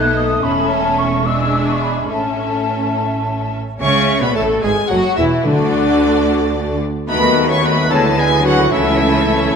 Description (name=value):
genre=quick classical-period movement for symphony orchestra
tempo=73 BPM (dotted quarters)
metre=6/8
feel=rubato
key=A major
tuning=A4 = 440 Hz
part: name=rich chamber violin section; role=melody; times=0.0-9.6 s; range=D5 to C#6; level=-22 LUFS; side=left 3 dB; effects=none
part: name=large flute ensemble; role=second line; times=0.0-9.6 s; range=F#4 to F#6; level=-22 LUFS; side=left 1 dB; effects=none
part: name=rich chamber violin section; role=second line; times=0.0-9.6 s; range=C#4 to C#5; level=-25 LUFS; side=left 4 dB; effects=none
part: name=warm clarinet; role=second line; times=0.0-9.6 s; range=C#4 to C#5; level=-25 LUFS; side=left 1 dB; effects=none
part: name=rich symphonic viola section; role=accompaniment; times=0.0-9.6 s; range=D3 to D4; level=-24 LUFS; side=equal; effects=none
part: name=warm bassoon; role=accompaniment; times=0.0-9.6 s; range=D3 to C#4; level=-25 LUFS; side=right 1 dB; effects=none
part: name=mellow French horn section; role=sustained chords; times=0.0-9.6 s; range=D3 to D#4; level=-23 LUFS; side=left 3 dB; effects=none
part: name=clear chamber cello section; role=bass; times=0.0-9.6 s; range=D2 to D#3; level=-22 LUFS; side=right 2 dB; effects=none
part: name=clear studio double bass section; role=bass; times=0.0-9.6 s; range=E1 to D#2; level=-23 LUFS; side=right 4 dB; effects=none
part: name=timpani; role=percussion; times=0.4-1.2, 5.5-6.2 s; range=E2 to D3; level=-24 LUFS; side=left 2 dB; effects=none
part: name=dark trumpet section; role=stabs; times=3.8-9.6 s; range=D4 to C#5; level=-22 LUFS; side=right 2 dB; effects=none
room=wet concert hall reverb, RT60 1.7 s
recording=none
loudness=-13 LUFS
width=side -6 dB against mid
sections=0.0-3.8 A section; 3.8-9.6 B section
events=none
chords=0.4 A/E; 1.3 E7; 2.1 A; 3.8 A/C#; 4.6 Eadd9; 5.5 D; 7.1 B7/D#; 7.9 E7/D; 8.7 A/C#